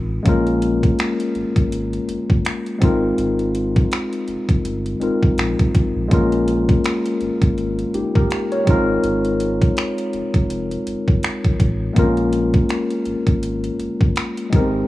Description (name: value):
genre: contemporary R&B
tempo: 82 BPM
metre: 4/4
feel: swing 58% on 16ths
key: Bb dorian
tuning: A4 = 439 Hz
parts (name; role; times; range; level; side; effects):
- tine electric piano; accompaniment; 0.0-14.9 s; Ab3 to Db5; -19 LUFS; left 1 dB; slow stereo tremolo
- warm sub bass; bass; 0.0-14.8 s; F1 to Bb1; -25 LUFS; equal; none
- trap drum kit; drums; 0.3-14.7 s; finger snaps, hi-hat, kick drum; -18 LUFS; equal; overdrive
room: little or no reverb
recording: worn, warbling old tape, cassette tape, warbly pitch drift, small room ambience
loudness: -16 LUFS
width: side -16 dB against mid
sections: 0.0-14.9 A section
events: none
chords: 0.3 Bbm7; 2.8 Ab69; 6.1 Bbm7; 8.7 Ab69; 12.0 Bbm7